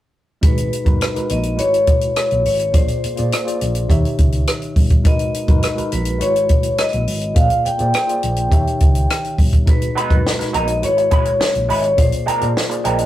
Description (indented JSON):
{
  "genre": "lush 1970s-style soul",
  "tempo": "104 BPM",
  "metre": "4/4",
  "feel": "straight",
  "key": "G# minor",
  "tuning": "A4 = 441 Hz",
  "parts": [
    { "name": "vibraphone with medium hard mallets", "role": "melody", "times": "0.4-13.1 s", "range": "B4 to G5", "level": "-20 LUFS", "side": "left 1 dB", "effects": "none" },
    { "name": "tine electric piano", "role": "accompaniment", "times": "0.4-13.1 s", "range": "D#3 to E5", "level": "-25 LUFS", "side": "equal", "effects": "overdrive, fast stereo tremolo" },
    { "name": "hollow-body short-scale fingered electric bass", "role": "bass", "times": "0.4-13.1 s", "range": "F#1 to A#2", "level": "-22 LUFS", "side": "equal", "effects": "none" },
    { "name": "compact cocktail drum kit", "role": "drums", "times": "0.4-13.1 s", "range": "hi-hat, kick drum, rim click, snare drum", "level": "-16 LUFS", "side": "equal", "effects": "none" },
    { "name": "electric guitar through a small old amp", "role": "riff", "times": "10.0-13.0 s", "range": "F#3 to B4", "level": "-21 LUFS", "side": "right 3 dB", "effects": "wah" }
  ],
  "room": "light reverb",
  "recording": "rough rehearsal-room recording",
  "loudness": "-14 LUFS",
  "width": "side -13 dB against mid",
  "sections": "0.4-13.1 A section",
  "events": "none",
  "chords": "0.4 G#m9; 1.6 E6/G#; 2.7 A#9; 3.9 D#7b9; 5.1 G#m9; 6.2 E6/G#; 7.4 A#9; 8.5 D#7b9; 9.7 G#m9; 10.8 E6/G#; 12.0 A#9",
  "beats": "| 0.43 1.01 1.58 2.16 | 2.74 3.32 3.90 4.47 | 5.05 5.63 6.21 6.79 | 7.36 7.94 8.52 9.10 | 9.68 10.25 10.83 11.41 | 11.98 12.56"
}